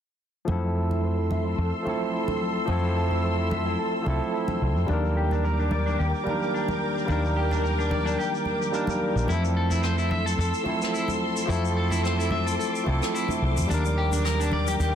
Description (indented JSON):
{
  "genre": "sunset chillout",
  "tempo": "109 BPM",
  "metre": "4/4",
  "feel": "swing 54% on 16ths",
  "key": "F major",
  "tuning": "A4 = 440 Hz",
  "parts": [
    { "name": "barky tine electric piano", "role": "accompaniment", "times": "0.4-14.9 s", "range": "Eb3 to Bb4", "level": "-28 LUFS", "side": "moving between left 3 dB and right 3 dB", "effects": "overdrive, auto-pan, low-pass filter, digital delay" },
    { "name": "soft string machine", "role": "sustained chords", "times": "0.8-14.9 s", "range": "A4 to E6", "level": "-31 LUFS", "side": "equal", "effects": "ensemble chorus" },
    { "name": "electric guitar at the edge of break-up", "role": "arpeggios", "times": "0.5-14.9 s", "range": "D4 to E5", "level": "-32 LUFS", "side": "left 3 dB", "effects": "warbly pitch drift, low-pass filter, digital delay" },
    { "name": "woody fretless electric bass", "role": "bass", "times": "0.5-14.9 s", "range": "Bb1 to F2", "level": "-25 LUFS", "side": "equal", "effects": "none" },
    { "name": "shaker and rim click", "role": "drums", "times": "0.5-14.9 s", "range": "none", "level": "-37 LUFS", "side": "left 2 dB", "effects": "low-pass filter on snare, low-pass filter on perc, low-pass filter on room" },
    { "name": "congas", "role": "percussion", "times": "0.5-14.6 s", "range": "none", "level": "-35 LUFS", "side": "right 1 dB", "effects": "none" }
  ],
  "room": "light reverb",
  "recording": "dense, heavily limited modern master",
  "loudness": "-23 LUFS",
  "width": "side -9 dB against mid",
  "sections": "0.5-14.9 A section",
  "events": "filter sweep on clean electric guitar 0.5-14.9",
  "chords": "0.5 Fmaj7; 4.9 Ebmaj7; 9.3 Fmaj7; 13.7 Ebmaj7",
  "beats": "| 0.49 1.04 1.59 2.14 | 2.69 3.24 3.79 4.34 | 4.89 5.44 5.99 6.54 | 7.09 7.64 8.19 8.74 | 9.29 9.84 10.39 10.95 | 11.50 12.05 12.60 13.15 | 13.70 14.25 14.80"
}